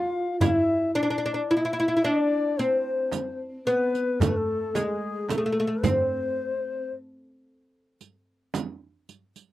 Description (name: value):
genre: Turkish makam ensemble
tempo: 111 BPM (eighths)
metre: 10/8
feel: straight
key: unclear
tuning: A4 = 440 Hz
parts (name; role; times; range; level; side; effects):
- oud; melody; 0.0-6.9 s; G#3 to F4; -25 LUFS; equal; none
- breathy bright low ney; second line; 0.0-6.9 s; G#4 to F5+22c; -29 LUFS; left 5 dB; none
- darbuka; percussion; 0.4-9.2 s; none; -30 LUFS; equal; none
- frame drum; percussion; 0.4-8.8 s; none; -29 LUFS; right 4 dB; none
- riq; percussion; 0.4-9.5 s; none; -35 LUFS; right 7 dB; none
room: light reverb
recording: dry, close 1970s-style studio recording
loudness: -23 LUFS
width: side -15 dB against mid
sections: 0.0-9.5 A section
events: none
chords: none